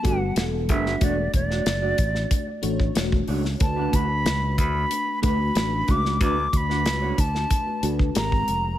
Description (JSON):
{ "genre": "polished 1980s jazz-funk pop", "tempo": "92 BPM", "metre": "4/4", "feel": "straight", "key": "D major", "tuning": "A4 = 438 Hz", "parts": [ { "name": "hollow concert flute", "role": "melody", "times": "0.0-8.8 s", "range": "D5 to D6", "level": "-27 LUFS", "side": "equal", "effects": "none" }, { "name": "FM electric piano with soft pad layer", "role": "accompaniment", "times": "0.0-8.8 s", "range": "G3 to D5", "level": "-29 LUFS", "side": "left 3 dB", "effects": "tremolo, analog chorus" }, { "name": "mellow electric guitar", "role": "riff", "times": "0.0-8.7 s", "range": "A3 to D5", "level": "-32 LUFS", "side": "right 6 dB", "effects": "wide subtle chorus" }, { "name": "modern bright fingered electric bass", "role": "bass", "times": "0.0-8.7 s", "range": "E1 to D2", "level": "-26 LUFS", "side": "equal", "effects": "none" }, { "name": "modern studio drum kit", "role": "drums", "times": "0.0-8.6 s", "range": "hi-hat, kick drum, snare drum", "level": "-24 LUFS", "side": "equal", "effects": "none" } ], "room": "light reverb, studio reverb", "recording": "none", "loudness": "-20 LUFS", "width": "side -12 dB against mid", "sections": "0.0-8.8 A section", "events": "none", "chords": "0.0 Gmaj9; 1.0 E13sus4; 3.6 D6; 8.2 G#maj9" }